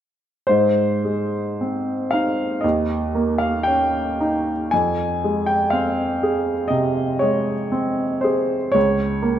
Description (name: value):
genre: classical, romantic nocturne for solo piano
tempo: 53-64 BPM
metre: 4/4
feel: rubato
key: Ab major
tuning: A4 = 440 Hz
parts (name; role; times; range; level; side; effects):
- clear upright piano; solo; 0.5-9.4 s; Db2 to Ab5; -18 LUFS; equal; none
room: moderate recital hall reverb, RT60 1.7 s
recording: dark, warm production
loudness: -18 LUFS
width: side -10 dB against mid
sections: 0.5-9.4 A section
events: none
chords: 0.5 Ab; 2.6 Eb7; 4.7 Fm; 8.8 Bbm/Db